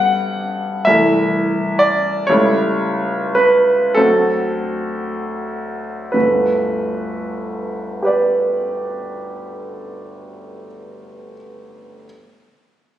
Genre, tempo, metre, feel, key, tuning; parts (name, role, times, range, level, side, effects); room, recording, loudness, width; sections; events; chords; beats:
classical, romantic nocturne for solo piano; 24-42 BPM (dotted quarters); 6/8; rubato; G major; A4 = 440 Hz
clear concert grand piano; solo; 0.0-12.1 s; G1 to G5; -16 LUFS; equal
wet recital hall reverb, RT60 1.5 s; recorded on a phone in the room, studio reverb, compression; -15 LUFS; side -12 dB against mid
0.0-6.1 A section; 6.1-9.9 B section
slowing down 0.0-6.1
0.0 G; 0.9 Am/C; 2.3 A7/C#; 4.0 D7; 6.1 G
0.85 | 2.29 3.98 | 6.14 8.02